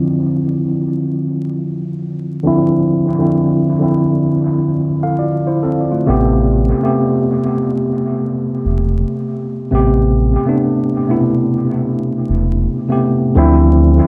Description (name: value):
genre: lo-fi hip hop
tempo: 66 BPM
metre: 4/4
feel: swing 65% on 16ths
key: D minor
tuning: A4 = 444 Hz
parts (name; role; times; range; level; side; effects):
- mellow tine electric piano; accompaniment; 0.0-14.1 s; B2 to F5; -16 LUFS; equal; cassette tape, low-pass filter, dub echo
- round analog bass; bass; 6.1-14.0 s; E1 to D2; -16 LUFS; equal; none
room: light reverb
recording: echo-heavy mix, vinyl crackle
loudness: -16 LUFS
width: mono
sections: 0.0-13.4 A section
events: filter sweep on tine electric piano 0.0-13.4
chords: 0.0 Dm9; 6.1 Am9; 13.4 Dm9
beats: 0.63 1.54 | 2.45 3.36 4.27 5.18 | 6.09 7.00 7.91 8.81 | 9.72 10.63 11.54 12.45 | 13.36